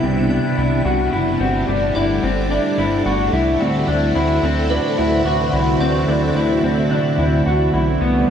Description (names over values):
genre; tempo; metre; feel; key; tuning
dream pop; 109 BPM; 4/4; straight; unclear; A4 = 440 Hz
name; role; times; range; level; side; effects
string machine, full ensemble; sustained chords; 0.0-8.3 s; C3 to F#4; -20 LUFS; equal; phaser, ensemble chorus
electric guitar at the edge of break-up; arpeggios; 0.0-8.3 s; B3 to F#4; -19 LUFS; left 1 dB; wide subtle chorus, tape echo
chorused synth bass; bass; 0.0-8.3 s; F#1 to D2; -22 LUFS; equal; none
shimmering bell with halo; texture; 0.0-7.5 s; B4 to G5; -32 LUFS; right 1 dB; ensemble chorus, tape echo
room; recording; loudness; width
wet huge ambient reverb, RT60 7.5 s; dreamy mix soaked in reverb; -15 LUFS; side -8 dB against mid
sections
0.0-8.3 A section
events
none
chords
0.0 Cmaj7; 1.4 Gsus2; 3.6 D7